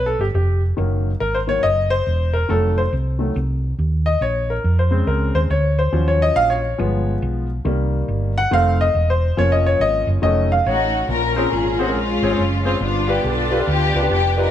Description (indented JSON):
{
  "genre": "uptempo gospel",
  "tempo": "140 BPM",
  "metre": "4/4",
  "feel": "swing 64% on 8ths",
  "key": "unclear",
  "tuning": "A4 = 440 Hz",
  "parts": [
    { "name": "clear grand piano", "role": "accompaniment", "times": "0.0-14.5 s", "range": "G2 to Gb5", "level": "-20 LUFS", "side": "left 2 dB", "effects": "none" },
    { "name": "hollow-body short-scale fingered electric bass", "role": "bass", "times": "0.0-14.5 s", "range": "E1 to F2", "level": "-20 LUFS", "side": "right 1 dB", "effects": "none" },
    { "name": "warm studio string section", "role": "melody", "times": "10.7-14.5 s", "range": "Ab3 to Bb4", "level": "-19 LUFS", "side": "left 2 dB", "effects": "none" }
  ],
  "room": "moderate stone room reverb, RT60 1.4 s",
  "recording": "band playing live in one room",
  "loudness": "-16 LUFS",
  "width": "side -10 dB against mid",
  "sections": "0.0-11.1 A section; 11.1-14.5 B section",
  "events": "grand piano solo 0.0-11.1",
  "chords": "0.0 G7; 0.8 Cm7b5/Gb; 2.5 F7b9; 4.2 Bbm9; 5.9 Ebm9; 6.8 G7b9; 7.7 Cm7; 8.5 F7; 9.4 Bbm/F; 10.2 F7b9b13; 11.1 Bbm9; 12.8 G7"
}